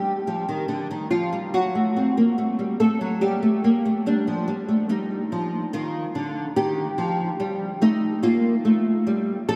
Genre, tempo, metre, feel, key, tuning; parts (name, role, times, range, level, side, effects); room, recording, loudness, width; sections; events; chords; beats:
classical, baroque-style dance for nylon-string guitar; 72 BPM; 4/4; rubato; G minor; A4 = 439 Hz
nylon-string guitar; solo; 0.0-9.6 s; D3 to A4; -23 LUFS; equal; analog chorus, delay
wet cathedral reverb, RT60 6.6 s; dreamy mix soaked in reverb; -23 LUFS; mono
0.0-9.6 A section
0.0 G5; 1.5 F#m; 3.2 G5; 4.9 Eb; 8.2 Bb5
0.69 | 1.54 2.38 3.22 4.07 | 4.91 5.75 6.57 7.40 | 8.24 9.07